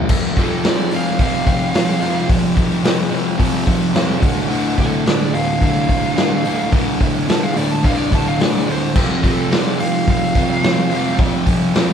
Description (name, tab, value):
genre	garage rock duo or trio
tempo	108 BPM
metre	4/4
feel	straight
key	unclear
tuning	A4 = 440 Hz
part	fuzz guitar	riff	0.0-11.9 s	D2 to F3	-18 LUFS	equal	distortion
part	raw garage drum kit	drums	0.1-11.9 s	crash cymbal, hi-hat, kick drum, snare drum	-18 LUFS	equal	none
part	fuzz lead guitar	melody	0.4-11.2 s	A4 to A5	-23 LUFS	right 2 dB	distortion
room	moderate studio ambience, RT60 0.5 s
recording	band playing live in one room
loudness	-14 LUFS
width	side -8 dB against mid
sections	0.1-11.9 A section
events	none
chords	0.1 F5; 4.2 Dm; 9.0 F5